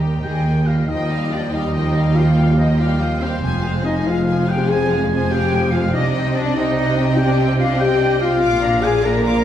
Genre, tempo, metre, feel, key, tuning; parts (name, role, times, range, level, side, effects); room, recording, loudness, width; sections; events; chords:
cinematic, heroic adventure film score; 96 BPM (dotted quarters); 12/8; straight; Eb major; A4 = 440 Hz
rich symphonic violin section; melody; 0.0-9.4 s; Eb5 to D6; -31 LUFS; left 2 dB
warm clarinet; second line; 0.0-0.5 s; G4; -42 LUFS; left 1 dB
warm studio violin section; second line; 0.0-9.4 s; G4 to G5; -32 LUFS; left 4 dB
warm symphonic viola section; accompaniment; 0.0-9.4 s; Eb3 to F4; -28 LUFS; left 1 dB
mellow French horn section; sustained chords; 0.0-9.4 s; G3 to Bb4; -21 LUFS; left 3 dB
clear trumpet section; stabs; 0.0-0.7 s; Eb4; -40 LUFS; left 3 dB
warm symphonic cello section; bass; 0.0-9.4 s; Eb2 to C3; -21 LUFS; right 1 dB
warm symphonic double bass section; bass; 0.0-9.4 s; F1 to Eb2; -20 LUFS; right 2 dB
bright large flute ensemble; second line; 0.2-9.4 s; C5 to Bb5; -28 LUFS; equal
clear oboe; second line; 0.2-9.4 s; C5 to Bb5; -28 LUFS; right 1 dB
wet recital hall reverb, RT60 1.5 s; heard from further back in the room; -15 LUFS; side -10 dB against mid
0.9-9.4 A section
0.0 Eb; 0.9 Ebadd9; 3.4 Fm; 5.9 Cmadd9; 8.4 Bb